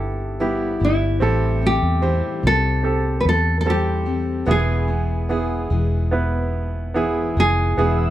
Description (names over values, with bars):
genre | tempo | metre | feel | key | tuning
pop | 74 BPM | 4/4 | straight | unclear | A4 = 441 Hz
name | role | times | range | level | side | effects
nylon-string guitar | melody | 0.0-8.1 s | E4 to B4 | -22 LUFS | equal | slapback echo
clear baby grand piano | accompaniment | 0.0-8.1 s | A2 to E5 | -24 LUFS | right 3 dB | none
picked steel-string acoustic guitar | arpeggios | 0.0-8.1 s | E2 to G#4 | -28 LUFS | left 6 dB | none
vintage muted fingered electric bass | bass | 0.0-8.1 s | E1 to E2 | -21 LUFS | equal | none
glassy FM pad | sustained chords | 7.9-8.1 s | B4 to E6 | -31 LUFS | left 3 dB | ensemble chorus, built-in reverb
room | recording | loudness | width
light reverb | dry, close 1970s-style studio recording | -18 LUFS | side -13 dB against mid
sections
0.0-7.8 A section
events
none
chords
0.0 Em/G; 1.2 Am7; 4.5 E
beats
0.41 | 1.22 2.03 2.85 3.67 | 4.48 5.30 6.13 6.96 | 7.79